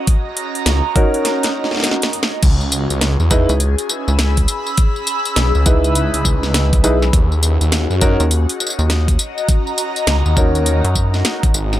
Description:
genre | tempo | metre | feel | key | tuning
glitch hop | 102 BPM | 4/4 | swing 63% on 16ths | unclear | A4 = 439 Hz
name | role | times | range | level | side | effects
airy breathy pad | texture | 0.0-11.8 s | C#4 to E6 | -23 LUFS | equal | chorus, phaser, sidechain pumping
drum and bass drum kit | drums | 0.1-11.8 s | crash cymbal, hi-hat, snare drum, tambourine | -20 LUFS | equal | none
electronic kick drum | drums | 0.1-11.5 s | none | -15 LUFS | equal | none
phased detuned saw bass | bass | 0.7-11.8 s | G#1 to F#2 | -16 LUFS | equal | phaser, tube saturation
dark grand piano | stabs | 1.0-11.5 s | C#4 to B4 | -20 LUFS | equal | sidechain pumping, tape echo
rubbery square bass | bass | 3.5-11.2 s | B1 to F#2 | -15 LUFS | equal | none
room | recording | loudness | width
digital ambience | none | -14 LUFS | side -13 dB against mid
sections
0.0-11.8 A section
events
kick drops out 1.2-2.4; drum fill 1.2-2.4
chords
0.0 D#m7; 2.4 C#m7; 7.1 D#m7

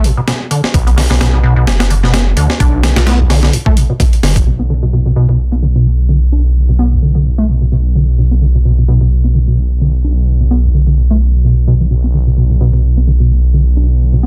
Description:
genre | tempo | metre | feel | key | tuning
breakbeat, breaks | 129 BPM | 4/4 | swing 56% on 16ths | B minor | A4 = 439 Hz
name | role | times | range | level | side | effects
deep acid bass | riff | 0.0-14.3 s | B1 to D4 | -17 LUFS | equal | subtle chorus, delay
breakbeat sampler-style drum kit | drums | 0.0-4.5 s | hi-hat, kick drum, snare drum | -16 LUFS | equal | none
detuned saw bass | bass | 0.7-14.3 s | F#1 to D2 | -13 LUFS | equal | none
room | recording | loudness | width
moderate studio reverb, RT60 0.5 s | dense, heavily limited modern master | -12 LUFS | mono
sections
0.0-4.5 A section; 4.5-14.3 B section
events
none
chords
0.0 Bm

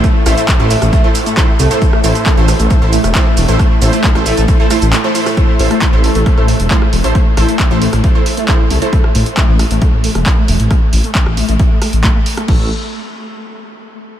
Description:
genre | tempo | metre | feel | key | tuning
driving peak-time techno | 135 BPM | 4/4 | straight | A minor | A4 = 440 Hz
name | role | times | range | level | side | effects
overdriven synth lead | riff | 0.0-12.7 s | A3 | -19 LUFS | equal | distortion, phaser, tube saturation, analog chorus, vintage 12-bit sampler grit, sidechain pumping, diffuse ambient delay
rave stab | stabs | 0.0-8.9 s | E4 to C5 | -19 LUFS | right 2 dB | chorus, built-in reverb, sidechain pumping, ping-pong delay
swarming drone | drone | 0.0-5.4 s | A2 to A3 | -24 LUFS | right 1 dB | none
electronic kick drum | drums | 0.0-12.6 s | none | -12 LUFS | equal | none
punchy analog drum machine | drums | 0.0-12.6 s | crash cymbal, handclaps, hi-hat, rim click, shaker | -19 LUFS | equal | sidechain pumping on hats, sidechain pumping on perc, sidechain pumping on cymbals
detuned saw bass | bass | 0.3-12.7 s | E1 to C2 | -14 LUFS | equal | sidechain pumping
room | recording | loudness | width
moderate huge ambient reverb, RT60 7.9 s | dreamy mix soaked in reverb | -9 LUFS | side -11 dB against mid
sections
0.0-5.4 A section; 5.4-12.5 B section; 12.5-14.2 C section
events
drop 0.0-5.4; break 4.9-5.4; filter sweep on detuned saw bass 5.4-12.5; filter sweep on analog synth lead 5.4-12.5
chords
0.0 Am; 12.5 N.C.

